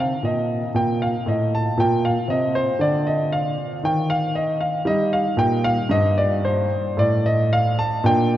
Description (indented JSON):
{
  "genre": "classical, baroque-style suite movement for grand piano",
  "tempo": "58 BPM",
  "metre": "3/4",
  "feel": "rubato",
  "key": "Bb major",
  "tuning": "A4 = 444 Hz",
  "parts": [
    { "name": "clear concert grand piano", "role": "solo", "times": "0.0-8.4 s", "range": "G2 to A5", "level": "-18 LUFS", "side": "equal", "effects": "none" }
  ],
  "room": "wet cathedral reverb, RT60 6.5 s",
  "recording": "dark, warm production, nothing above 7.6 kHz",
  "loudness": "-18 LUFS",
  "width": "side -13 dB against mid",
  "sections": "0.0-8.4 A section",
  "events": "none",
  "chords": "0.0 Eb5; 1.8 Bb; 3.8 N.C.; 4.8 Eb; 7.0 N.C.",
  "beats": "0.75 | 1.78 2.79 3.82 | 4.85 5.90 6.98 | 8.04"
}